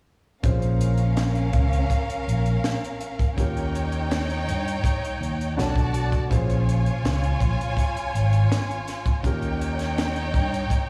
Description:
lush 1970s-style soul; 82 BPM; 4/4; straight; Bb dorian; A4 = 439 Hz
warm studio violin section; second line; 0.4-10.9 s; Db4 to A5; -32 LUFS; equal; slapback echo
warm concert grand piano; accompaniment; 0.4-10.9 s; Db4 to Db5; -37 LUFS; equal; slapback echo
fingered electric bass; bass; 0.4-10.6 s; Ab1 to G2; -25 LUFS; equal
compact cocktail drum kit; drums; 0.4-10.9 s; hi-hat, kick drum, snare drum; -28 LUFS; equal
little or no reverb; live gig heard through the venue's PA, recital hall reverb, small room reverb; -24 LUFS; mono
0.4-10.9 A section
0.4 Bbm7; 3.4 Eb7; 5.6 Bm7; 6.3 Bbm7; 9.2 Eb7

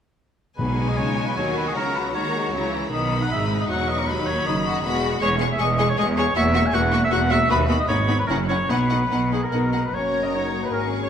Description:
quick classical-period movement for symphony orchestra; 155 BPM; 3/4; rubato; B major; A4 = 440 Hz
rich chamber violin section; melody; 0.6-11.1 s; F#5 to C#6; -31 LUFS; left 3 dB
rich studio violin section; second line; 0.6-11.1 s; D#4 to A#4; -29 LUFS; left 4 dB
warm oboe; second line; 0.6-11.1 s; G#4 to G#5; -24 LUFS; left 1 dB
rich chamber viola section; accompaniment; 0.6-11.1 s; D#3 to D#4; -28 LUFS; left 1 dB
clear chamber double bass section; bass; 0.6-11.1 s; E1 to D#2; -27 LUFS; right 3 dB
rich symphonic cello section; bass; 0.6-11.1 s; D#2 to D#3; -26 LUFS; right 1 dB
timpani; percussion; 0.6-1.1 s; B2; -29 LUFS; left 1 dB
clear clarinet; second line; 9.3-11.1 s; G#4 to D#5; -32 LUFS; left 2 dB
silver concert flute; second line; 9.3-11.1 s; G#4 to D#5; -29 LUFS; left 1 dB
mellow French horn section; sustained chords; 10.0-11.1 s; A#3 to F#4; -30 LUFS; left 6 dB
wet scoring stage reverb, RT60 1.8 s; -19 LUFS; side -8 dB against mid
0.6-9.9 A section; 9.9-11.1 B section
0.6 B; 1.8 F#7/C#; 2.9 B; 5.2 C#m/E; 6.4 F#7/E; 7.5 B/D#; 7.9 G#m; 8.3 F#7(no3); 8.7 B; 9.9 F#

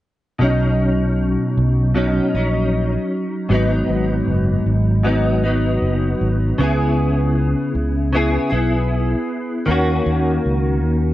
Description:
indie pop, bedroom pop; 78 BPM; 4/4; swing 55% on 16ths; B major; A4 = 444 Hz
direct-recorded clean electric guitar; accompaniment; 0.4-11.1 s; G#2 to G#4; -18 LUFS; equal; ensemble chorus, vibrato effect
fretless electric bass; bass; 0.4-11.1 s; F#1 to D#2; -19 LUFS; equal
little or no reverb; dark, warm production, nothing above 10.5 kHz; -16 LUFS; side -15 dB against mid
0.4-11.1 A section
0.4 Badd9; 3.5 G#m7; 6.6 C#m7; 9.7 D#m7

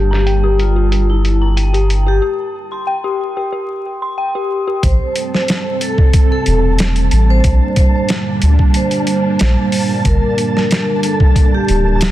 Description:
trip hop; 92 BPM; 4/4; straight; A phrygian; A4 = 440 Hz
vibraphone with medium mallets; melody; 0.0-12.0 s; E4 to C5; -21 LUFS; left 1 dB; tape echo
string machine, cellos; sustained chords; 0.0-12.1 s; G3 to Bb4; -19 LUFS; right 2 dB; ensemble chorus
soft dub sub bass; bass; 0.0-12.1 s; D1 to D2; -13 LUFS; equal; tube saturation
flickering grainy texture; texture; 0.0-12.1 s; A5; -27 LUFS; right 1 dB; built-in reverb
dark detuned synth bell; arpeggios; 0.1-4.9 s; G4 to C6; -20 LUFS; left 3 dB; chorus, phaser, ping-pong delay
boom bap sampler-style drum kit; drums; 0.1-12.1 s; hi-hat, kick drum, snare drum; -15 LUFS; equal; high-pass filter on hats, high-pass filter on snare, high-pass filter on kick
light reverb; dense, heavily limited modern master, vinyl crackle, low-pass filter; -12 LUFS; side -14 dB against mid
0.0-4.8 A section; 4.8-12.1 B section
break 2.2-4.8
0.0 Gm; 2.2 C5/G; 4.8 Am7; 7.4 Bb6; 10.1 Gm

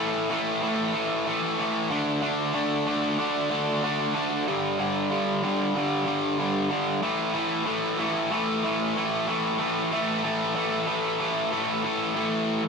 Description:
rock; 94 BPM; 4/4; straight; A4 = 440 Hz
cranked stack guitar; solo; 0.0-12.7 s; G2 to D4; -24 LUFS; equal; overdrive
moderate stone room reverb, RT60 0.9 s; rough rehearsal-room recording; -24 LUFS; side -5 dB against mid
0.0-12.2 A section
0.0 A5; 1.9 D5; 4.5 G5; 7.0 A5

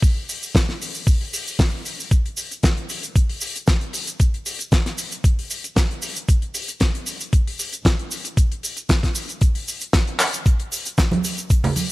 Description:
nu-disco; 115 BPM; 4/4; straight
damped 70s drum kit; drums; 0.0-11.9 s; cabasa, handclaps, hi-hat, snare drum; -23 LUFS; equal; studio reverb
electronic kick drum; drums; 0.0-11.6 s; -17 LUFS; equal; studio reverb
egg shaker and congas; percussion; 10.5-11.9 s; -23 LUFS; right 3 dB
small room ambience; dry, gritty hardware recording, transformer saturation; -19 LUFS; side -19 dB against mid
0.0-11.9 A section
drum fill 10.2

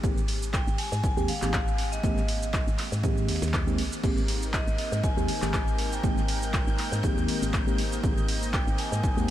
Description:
deep house; 120 BPM; 4/4; swing 54% on 16ths; Ab major; A4 = 445 Hz
mellow FM electric piano; stabs; 0.0-9.3 s; Eb3 to G4; -32 LUFS; equal; chorus, phaser, ping-pong delay
woody FM bass; bass; 0.0-9.3 s; Ab1 to Ab2; -31 LUFS; equal; sidechain pumping
electronic kick drum; drums; 0.0-9.1 s; -28 LUFS; equal
punchy analog drum machine; drums; 0.0-9.3 s; crash cymbal, handclaps, hi-hat, shaker; -34 LUFS; right 1 dB
warm soul drum kit; drums; 0.0-9.3 s; ride cymbal, snare drum; -46 LUFS; right 5 dB
vibraphone with hard mallets; melody; 0.5-9.3 s; Eb5 to Ab5; -36 LUFS; equal; analog delay
warm analog pad; sustained chords; 4.0-9.3 s; Bb3 to Eb5; -37 LUFS; equal; chorus, vintage 12-bit sampler grit, sidechain pumping
dark studio violin section; texture; 4.0-9.3 s; G6; -41 LUFS; equal
light reverb, small room reverb; -24 LUFS; side -12 dB against mid
0.0-9.3 A section
0.0 Abmaj9

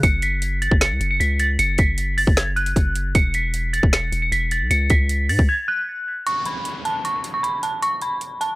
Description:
hip hop, trap; 154 BPM; 4/4; half-time; F# minor; A4 = 440 Hz
dark detuned synth bell; melody; 0.0-8.6 s; A5 to C#7; -21 LUFS; equal; chorus, low-pass filter
long sustained 808-style bass; bass; 0.0-5.5 s; E1 to G#2; -22 LUFS; equal
trap drum kit; drums; 0.0-8.5 s; finger snaps, hi-hat, kick drum, snare drum; -20 LUFS; equal
downlifter; sound effects; 6.3-8.6 s; -34 LUFS; equal
little or no reverb; dry, gritty hardware recording; -18 LUFS; side -19 dB against mid
0.0-6.3 A section; 6.3-8.6 B section
break 5.5-6.3
0.0 F#5; 3.1 E5; 4.7 C#5; 6.3 N.C.

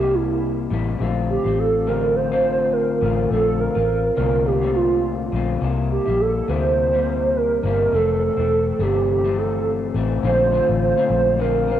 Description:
indie pop, bedroom pop; 104 BPM; 4/4; swing 55% on 16ths; Bb lydian; A4 = 440 Hz
hollow clarinet-like synth lead; melody; 0.0-11.8 s; E4 to C5; -20 LUFS; right 3 dB; analog chorus, cassette tape, analog delay
electric guitar through a small old amp; accompaniment; 0.0-11.8 s; F2 to F4; -24 LUFS; left 8 dB; wide subtle chorus, vibrato effect, cassette tape
vintage muted fingered electric bass; bass; 0.0-11.8 s; E1 to D2; -24 LUFS; left 1 dB
moderate lush hall reverb, RT60 2.2 s; home recording on cassette; -17 LUFS; side -10 dB against mid
0.0-10.2 A section; 10.2-11.8 B section
0.0 C7; 1.0 Bbmaj9; 5.6 C7; 7.9 Fmaj7; 10.2 Bbmaj9

